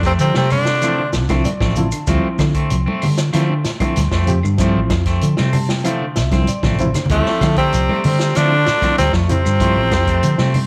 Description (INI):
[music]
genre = afrobeat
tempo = 96 BPM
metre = 4/4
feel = straight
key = D minor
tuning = A4 = 443 Hz
[part]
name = clean electric guitar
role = arpeggios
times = 0.0-10.7 s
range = D3 to G3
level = -29 LUFS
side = equal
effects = none
[part]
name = electric guitar at the edge of break-up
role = stabs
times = 0.0-10.6 s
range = F3 to C4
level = -28 LUFS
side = equal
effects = none
[part]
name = hollow-body short-scale fingered electric bass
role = bass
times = 0.0-10.7 s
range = A1 to D3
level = -20 LUFS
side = equal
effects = none
[part]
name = vintage drum kit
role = drums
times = 0.0-10.7 s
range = hi-hat, kick drum, snare drum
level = -26 LUFS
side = equal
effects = none
[part]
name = shekere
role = percussion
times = 0.0-10.7 s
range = none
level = -32 LUFS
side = equal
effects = none
[part]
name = raspy tenor saxophone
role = melody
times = 0.1-1.1, 7.1-10.5 s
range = A3 to D4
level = -21 LUFS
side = equal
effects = none
[part]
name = clear baritone saxophone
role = second line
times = 0.1-1.1, 7.1-10.5 s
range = A2 to D3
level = -30 LUFS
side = equal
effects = none
[part]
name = raspy alto saxophone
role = second line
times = 0.1-1.1, 7.1-10.5 s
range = F3 to A3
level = -34 LUFS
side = equal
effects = none
[part]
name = congas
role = percussion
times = 0.2-10.7 s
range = none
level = -26 LUFS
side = equal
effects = none
[part]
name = claves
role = percussion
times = 0.5-10.7 s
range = none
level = -37 LUFS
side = equal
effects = none
[part]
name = reed electric piano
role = accompaniment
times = 0.8-10.0 s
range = F3 to A5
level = -26 LUFS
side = equal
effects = overdrive, fast tremolo
[sound]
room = light reverb, studio ambience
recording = none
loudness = -16 LUFS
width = mono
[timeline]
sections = 0.0-10.7 A section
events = reed electric piano fill 1.1-2.1, 5.2-7.1; drum fill 6.3-7.1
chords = 0.0 Dm7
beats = 0.20 0.82 1.45 | 2.08 2.71 3.34 3.97 | 4.59 5.22 5.85 6.48 | 7.10 7.73 8.36 8.98 | 9.61 10.23